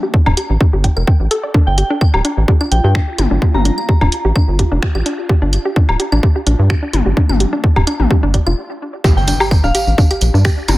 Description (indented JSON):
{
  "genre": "minimal techno",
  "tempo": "128 BPM",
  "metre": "4/4",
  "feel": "swing 54% on 16ths",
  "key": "G minor",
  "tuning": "A4 = 440 Hz",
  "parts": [
    { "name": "hollow square pluck", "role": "riff", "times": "0.0-10.7 s", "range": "D4 to G5", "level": "-20 LUFS", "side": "equal", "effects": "chorus, sidechain pumping, dub echo" },
    { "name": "electronic kick drum", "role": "drums", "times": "0.1-10.6 s", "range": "none", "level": "-13 LUFS", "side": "equal", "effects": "none" },
    { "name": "rubbery square bass", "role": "bass", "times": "0.3-10.8 s", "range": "D1 to G2", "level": "-14 LUFS", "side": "equal", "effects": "sidechain pumping" },
    { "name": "electronic woodblock, claves and toms", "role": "percussion", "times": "0.3-10.8 s", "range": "none", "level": "-20 LUFS", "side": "left 3 dB", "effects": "overdrive, dub echo" },
    { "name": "punchy analog drum machine", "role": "drums", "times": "0.4-10.8 s", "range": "finger snaps, hi-hat", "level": "-23 LUFS", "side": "right 1 dB", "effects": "dub echo" },
    { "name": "swarming drone", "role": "texture", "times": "2.5-10.8 s", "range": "F4 to G4", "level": "-30 LUFS", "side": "right 1 dB", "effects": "none" },
    { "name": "soft synth bell", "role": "melody", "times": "1.7-4.2, 9.2-10.0 s", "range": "F5 to Bb5", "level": "-23 LUFS", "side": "equal", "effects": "chorus, phaser, dub echo" },
    { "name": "tambourine", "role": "percussion", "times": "9.0-10.8 s", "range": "none", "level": "-26 LUFS", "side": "right 3 dB", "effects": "none" },
    { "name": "impact", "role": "sound effects", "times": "9.0-10.8 s", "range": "none", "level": "-23 LUFS", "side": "equal", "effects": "none" }
  ],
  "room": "light reverb",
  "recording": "echo-heavy mix",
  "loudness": "-12 LUFS",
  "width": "side -18 dB against mid",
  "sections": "0.0-9.0 A section; 9.0-10.8 B section",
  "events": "break 8.6-9.0; drop 9.0-10.8; impact 9.0-10.8",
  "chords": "0.0 G7(no3); 9.0 G5",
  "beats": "0.14 0.61 1.07 | 1.54 2.01 2.48 2.95 | 3.42 3.89 4.36 4.83 | 5.29 5.76 6.23 6.70 | 7.17 7.64 8.11 8.57 | 9.04 9.51 9.98 10.45"
}